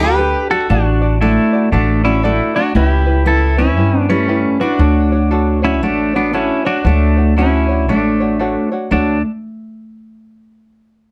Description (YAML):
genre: Hawaiian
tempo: 117 BPM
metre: 4/4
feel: swing 62% on 8ths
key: D major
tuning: A4 = 440 Hz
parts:
  - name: pedal steel guitar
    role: melody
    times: 0.0-9.2 s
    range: A3 to B4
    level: -19 LUFS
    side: equal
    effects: slapback echo
  - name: fingerpicked steel-string acoustic guitar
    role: second line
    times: 0.0-9.2 s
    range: G3 to G4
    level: -23 LUFS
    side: equal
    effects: none
  - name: tenor ukulele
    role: accompaniment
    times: 0.0-9.2 s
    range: C#4 to D5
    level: -23 LUFS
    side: equal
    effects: none
  - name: upright bass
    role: bass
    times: 0.0-9.2 s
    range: A1 to G2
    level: -18 LUFS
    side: equal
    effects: transformer saturation
room: little or no reverb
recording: dry, close 1970s-style studio recording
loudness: -15 LUFS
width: mono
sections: 0.0-8.9 A section; 8.9-11.0 B section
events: none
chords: 0.0 Gadd9; 0.7 D/A; 2.7 C#m7b5; 4.8 Dmaj7